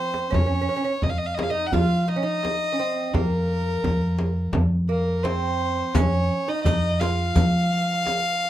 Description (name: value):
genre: Persian modal ensemble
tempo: 85 BPM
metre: 4/4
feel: straight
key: F dastgah shur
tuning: A4 = 438 Hz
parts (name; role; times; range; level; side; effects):
- warm violin; melody; 0.0-8.5 s; Bb4 to Gb5+39c; -26 LUFS; left 1 dB; none
- lute; second line; 0.0-8.5 s; Bb3 to F4; -29 LUFS; right 6 dB; none
- tombak; percussion; 0.1-8.2 s; none; -27 LUFS; right 1 dB; none
- upright bass; bass; 0.3-8.5 s; F2 to F3; -24 LUFS; equal; none
- frame drum; percussion; 0.3-8.2 s; none; -26 LUFS; left 1 dB; none
- riq; percussion; 6.0-8.2 s; none; -32 LUFS; left 1 dB; none
room: light reverb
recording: lossy compression artefacts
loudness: -20 LUFS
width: side -12 dB against mid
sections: 0.3-8.5 A section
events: drum fill 0.0-0.3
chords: none